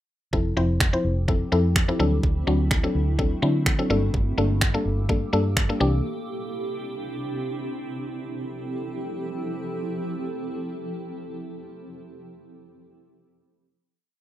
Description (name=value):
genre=dance-pop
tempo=126 BPM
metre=4/4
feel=straight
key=F major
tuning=A4 = 438 Hz
part: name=mallet-like synth pluck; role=accompaniment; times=0.3-6.0 s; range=E3 to C5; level=-25 LUFS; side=left 2 dB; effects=chorus, sidechain pumping, plate reverb
part: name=granular cloud pad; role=sustained chords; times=1.1-11.4 s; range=C3 to A4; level=-32 LUFS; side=right 1 dB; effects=built-in reverb, sidechain pumping
part: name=vintage muted fingered electric bass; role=bass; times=0.3-6.0 s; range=F1 to D3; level=-24 LUFS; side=equal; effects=sidechain pumping
part: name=pop drum kit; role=drums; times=0.3-5.7 s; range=finger snaps, kick drum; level=-23 LUFS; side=equal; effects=overdrive
room=moderate small room reverb, RT60 0.5 s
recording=rough home demo mix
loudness=-22 LUFS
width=side -13 dB against mid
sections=0.3-8.0 verse; 8.0-11.8 final chord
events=none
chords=0.3 Fmaj7; 2.0 D7; 3.9 Gmadd9; 5.8 Cadd9; 8.0 Fmaj7